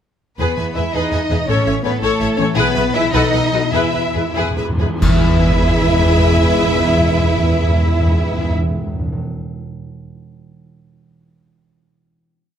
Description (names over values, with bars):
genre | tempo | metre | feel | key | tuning
cinematic, heroic adventure film score | 87-112 BPM (dotted quarters) | 6/8 | straight | E major | A4 = 442 Hz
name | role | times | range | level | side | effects
warm symphonic violin section | melody | 0.4-8.5 s | A4 to E5 | -22 LUFS | left 3 dB | none
rich symphonic violin section | second line | 0.4-8.5 s | E4 to G#5 | -24 LUFS | left 1 dB | none
warm symphonic viola section | accompaniment | 0.4-8.5 s | E4 to C#5 | -23 LUFS | equal | none
concert harp | arpeggios | 0.4-9.4 s | E2 to E5 | -25 LUFS | left 8 dB | none
dark studio cello section | bass | 0.4-8.5 s | A3 to E4 | -22 LUFS | right 3 dB | none
rich symphonic double bass section | bass | 0.4-8.5 s | A1 to E2 | -21 LUFS | right 2 dB | none
mellow French horn section | sustained chords | 0.8-8.5 s | G#3 to F#4 | -24 LUFS | left 4 dB | none
cymbal swell, clash cymbals and concert bass drum | percussion | 2.6-5.9 s | none | -21 LUFS | equal | none
timpani | percussion | 3.7-9.2 s | E2 | -19 LUFS | equal | none
room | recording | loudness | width
moderate scoring stage reverb, RT60 1.9 s | close, detailed microphones | -14 LUFS | side -9 dB against mid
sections
0.4-5.0 theme; 5.0-7.8 final chord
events
slowing down 2.0-5.0; timpani fill 3.7-5.0; band accent 5.0-5.5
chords
0.4 E; 1.5 A; 2.6 E/B; 3.1 B7; 3.7 E